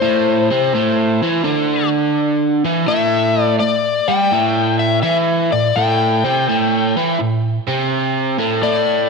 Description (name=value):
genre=rock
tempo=84 BPM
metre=4/4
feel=swing 67% on 8ths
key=A minor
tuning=A4 = 445 Hz
part: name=overdriven slide guitar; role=melody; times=0.0-9.1 s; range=C5 to G5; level=-18 LUFS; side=left 8 dB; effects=slapback echo
part: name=crunchy overdriven guitar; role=riff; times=0.0-9.1 s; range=A2 to G4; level=-16 LUFS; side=right 2 dB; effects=spring reverb
room=moderate plate reverb, RT60 2.8 s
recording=none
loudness=-14 LUFS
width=side -4 dB against mid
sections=0.0-9.1 A section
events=none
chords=0.0 Am